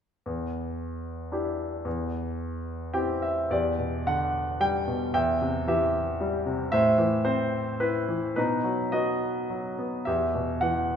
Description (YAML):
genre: classical, lyrical solo piano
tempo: 103-114 BPM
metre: 3/4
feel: rubato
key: E minor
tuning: A4 = 440 Hz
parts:
  - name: bright concert grand piano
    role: solo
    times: 0.3-11.0 s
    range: E2 to G5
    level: -25 LUFS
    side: equal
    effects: none
room: wet recital hall reverb, RT60 1.7 s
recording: recorded in a church or concert hall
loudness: -25 LUFS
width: side -8 dB against mid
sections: 0.3-3.5 A section; 3.5-11.0 B section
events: grand piano fill 2.7-3.5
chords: 0.3 Em7; 1.9 C/E; 3.5 Em7; 5.1 C/E; 6.7 Am; 8.4 B; 10.1 Em